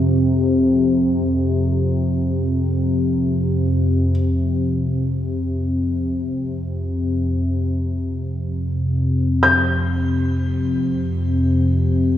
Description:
world meditative, free-time meditation music; free time; A4 = 441 Hz
deep dark ambient pad; drone; 0.0-12.2 s; F2 to C3; -17 LUFS; left 1 dB; chorus, built-in reverb
felt-muted upright piano; texture; 0.0-12.2 s; C6 to G6; -18 LUFS; left 1 dB; shimmer reverb
wet scoring stage reverb, RT60 1.9 s; small room ambience; -17 LUFS; side -11 dB against mid
0.0-12.2 A section
free time

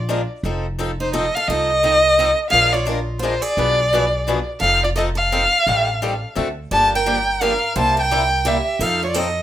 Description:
acoustic string swing (jazz manouche); 172 BPM; 3/4; swing 61% on 8ths; F mixolydian; A4 = 441 Hz
warm violin; melody; 0.0-9.4 s; C5 to A5; -17 LUFS; equal
picked steel-string acoustic guitar; second line; 0.0-9.4 s; Eb4 to D5; -28 LUFS; right 4 dB
upright bass; bass; 0.0-9.4 s; F1 to F2; -25 LUFS; equal
picked steel-string acoustic guitar; accompaniment; 0.1-9.3 s; B2 to B4; -29 LUFS; right 6 dB
picked swing-style acoustic guitar; accompaniment; 0.1-9.3 s; B2 to B4; -26 LUFS; left 5 dB
moderate studio reverb, RT60 0.6 s; rough home demo mix; -16 LUFS; side -12 dB against mid
0.0-9.4 A section
0.4 F7; 2.5 Bb7; 3.6 Bdim7; 4.6 F7; 5.7 Am7b5; 6.4 D7; 6.7 Gm7; 7.8 C7; 8.8 F7
0.09 | 0.44 0.79 1.14 | 1.48 1.83 2.18 | 2.53 2.88 3.22 | 3.57 3.92 4.27 | 4.62 4.96 5.31 | 5.66 6.01 6.36 | 6.71 7.06 7.41 | 7.75 8.10 8.45 | 8.80 9.15

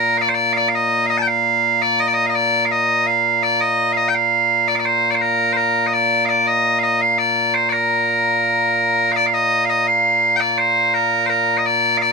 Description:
scottish traditional, Scottish pipe music; 84 BPM; 2/4; straight; Bb major; A4 = 440 Hz
loud bright bagpipes; solo; 0.0-12.1 s; Bb2 to A5; -15 LUFS; equal
little or no reverb; close, detailed microphones; -15 LUFS; side -4 dB against mid
0.0-9.2 A section; 9.2-12.1 A section
| 0.58 1.29 | 2.01 2.72 | 3.44 4.15 | 4.87 5.58 | 6.29 7.01 | 7.72 8.44 | 9.15 9.87 | 10.58 11.29 | 12.01

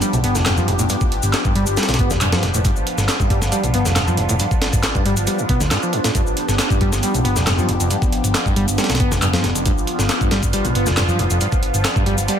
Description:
breakbeat, breaks; 137 BPM; 4/4; straight; G mixolydian; A4 = 441 Hz
phased analog pad; sustained chords; 0.0-12.4 s; F3 to G4; -23 LUFS; equal; phaser, chorus, sidechain pumping
overdriven acid bass; riff; 0.0-12.4 s; G1 to B3; -23 LUFS; equal; wide subtle chorus, ping-pong delay
hollow-body short-scale picked electric bass; bass; 0.0-12.3 s; F1 to G2; -20 LUFS; equal; tube saturation
breakbeat sampler-style drum kit; drums; 0.0-12.4 s; hi-hat, kick drum, snare drum; -20 LUFS; equal
electronic shaker and handclaps; drums; 0.0-12.4 s; -26 LUFS; left 1 dB
light reverb, digital ambience; dense, heavily limited modern master; -16 LUFS; side -8 dB against mid
0.0-12.4 A section
0.0 G7
0.02 0.46 | 0.90 1.34 1.77 2.21 | 2.65 3.09 3.53 3.96 | 4.40 4.84 5.28 5.72 | 6.15 6.59 7.03 7.47 | 7.91 8.34 8.78 9.22 | 9.66 10.10 10.53 10.97 | 11.41 11.85 12.29

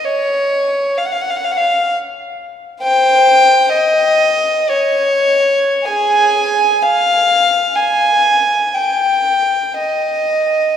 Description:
classical, free, expressive piece for unaccompanied violin; 48-67 BPM; 3/4; rubato; A4 = 440 Hz
warm violin; solo; 0.0-10.8 s; Ab4 to Ab5; -12 LUFS; left 1 dB
wet church reverb, RT60 2.9 s; small room ambience; -12 LUFS; side -9 dB against mid
0.0-10.8 A section
| 0.05 0.98 1.91 | 2.83 3.73 4.70 | 5.86 6.83 7.76 | 8.75 9.80

